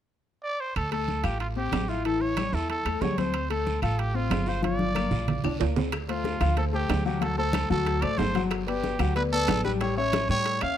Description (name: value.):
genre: latin, salsa.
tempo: 186 BPM.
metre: 4/4.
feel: straight.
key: D minor.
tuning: A4 = 439 Hz.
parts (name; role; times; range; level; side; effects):
growling trumpet; melody; 0.4-10.8 s; F4 to F5; -30 LUFS; right 2 dB; none.
upright bass; bass; 0.8-10.8 s; G1 to A2; -29 LUFS; right 2 dB; none.
claves; percussion; 0.8-10.8 s; none; -42 LUFS; left 10 dB; none.
congas; percussion; 0.8-10.8 s; none; -32 LUFS; equal; none.
guiro; percussion; 0.8-10.8 s; none; -44 LUFS; right 7 dB; none.
timbales; percussion; 0.8-10.8 s; none; -33 LUFS; right 12 dB; none.
warm grand piano; accompaniment; 0.9-10.8 s; E3 to G5; -30 LUFS; left 7 dB; none.
bongos; percussion; 5.9-10.8 s; none; -38 LUFS; left 7 dB; none.
room: small room ambience.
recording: dry, close 1970s-style studio recording.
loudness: -24 LUFS.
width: side -10 dB against mid.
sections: 0.8-5.9 A section; 5.9-10.8 B section.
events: drum fill 4.6-5.9.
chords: 0.0 N.C.; 0.8 Dm7; 2.0 A7; 3.3 Dm7; 4.6 Gm7; 5.9 Dm7; 7.2 D7; 8.5 Gmaj7; 9.8 A7.